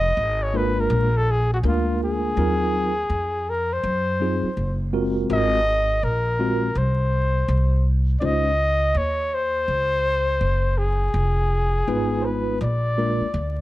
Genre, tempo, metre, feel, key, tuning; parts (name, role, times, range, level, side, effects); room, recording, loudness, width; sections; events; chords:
hip hop, jazz-hop; 82 BPM; 4/4; swing 62% on 16ths; Eb dorian; A4 = 440 Hz
breathy flugelhorn; melody; 0.0-13.6 s; F4 to Eb5; -23 LUFS; left 1 dB
upright bass; bass; 0.0-13.6 s; F1 to Gb2; -23 LUFS; equal
mellow tine electric piano; accompaniment; 0.5-13.3 s; Gb3 to C5; -24 LUFS; right 1 dB; medium stereo tremolo
light reverb, small room reverb; vinyl crackle; -19 LUFS; side -16 dB against mid
0.0-2.4 A section; 2.4-13.6 B section
flugelhorn solo 0.0-2.4
0.0 Db13/F (rootless); 0.9 Bb7; 2.4 Ebm69; 5.3 Ab13; 8.2 Dbmaj7sus2; 11.1 Fm7b5; 12.6 Bb7